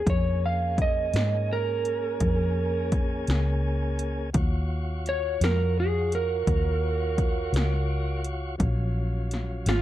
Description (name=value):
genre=slow blues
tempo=56 BPM (dotted quarters)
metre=12/8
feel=straight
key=unclear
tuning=A4 = 440 Hz
part: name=electric slide guitar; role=melody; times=0.0-9.8 s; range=F4 to F5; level=-28 LUFS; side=right 3 dB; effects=slapback echo
part: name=tonewheel organ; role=sustained chords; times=0.0-9.8 s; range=Gb3 to Db5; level=-34 LUFS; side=left 1 dB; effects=fast rotary speaker
part: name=vintage muted fingered electric bass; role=bass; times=0.0-9.8 s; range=Ab1 to Ab2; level=-26 LUFS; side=equal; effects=none
part: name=80s electronic pad drums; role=drums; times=0.1-9.8 s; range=hi-hat, kick drum, snare drum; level=-27 LUFS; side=equal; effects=none
room=little or no reverb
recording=dry, close 1970s-style studio recording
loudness=-24 LUFS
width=side -13 dB against mid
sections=0.0-9.8 A section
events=electric slide guitar solo 0.0-9.8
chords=0.0 Bbm7; 4.3 Ebm9